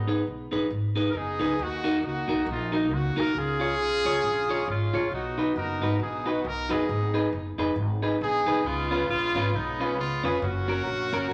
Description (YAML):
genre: ska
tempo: 136 BPM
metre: 4/4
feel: swing 58% on 8ths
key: unclear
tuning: A4 = 440 Hz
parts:
  - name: warm horn section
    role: melody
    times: 0.0-11.3 s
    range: G#3 to A#4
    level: -30 LUFS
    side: equal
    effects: none
  - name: upright bass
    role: bass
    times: 0.0-11.3 s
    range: E#1 to D#2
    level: -34 LUFS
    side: equal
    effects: none
  - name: clean electric guitar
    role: accompaniment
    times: 0.1-11.3 s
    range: C#4 to C#5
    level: -30 LUFS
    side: equal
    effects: none
room: wet large studio reverb, RT60 1.2 s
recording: none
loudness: -27 LUFS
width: mono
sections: 0.0-11.3 A section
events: none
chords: 0.0 G#m; 1.6 D#m; 3.4 C#; 5.1 B; 6.9 G#m; 8.7 C#7; 10.4 F#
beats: 0.27 0.71 1.15 | 1.59 2.03 2.47 2.92 | 3.36 3.80 4.24 4.68 | 5.12 5.56 6.01 6.45 | 6.89 7.33 7.77 8.21 | 8.66 9.10 9.54 9.98 | 10.43 10.87 11.31